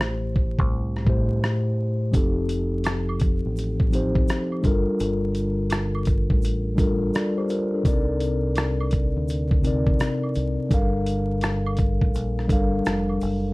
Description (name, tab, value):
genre	lo-fi hip hop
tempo	84 BPM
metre	4/4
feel	swing 65% on 16ths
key	G minor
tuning	A4 = 441 Hz
part	mellow tine electric piano	accompaniment	0.0-13.5 s	A2 to F5	-24 LUFS	left 1 dB	slow stereo tremolo, cassette tape
part	deep dub fingered electric bass	bass	0.0-13.5 s	F1 to D2	-27 LUFS	equal	none
part	dusty soul sampler-style drum kit	drums	0.0-13.4 s	hi-hat, kick drum, rim click	-22 LUFS	equal	none
part	tube shaker and woodblock	percussion	2.1-13.4 s	none	-40 LUFS	right 4 dB	none
room	moderate studio reverb, RT60 0.5 s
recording	dark, warm production, vinyl crackle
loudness	-21 LUFS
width	side -23 dB against mid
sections	0.0-13.5 A section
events	break 0.0-2.1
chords	0.0 Am7; 2.1 F9; 4.6 Gm9; 7.9 Cm9; 10.7 Gm9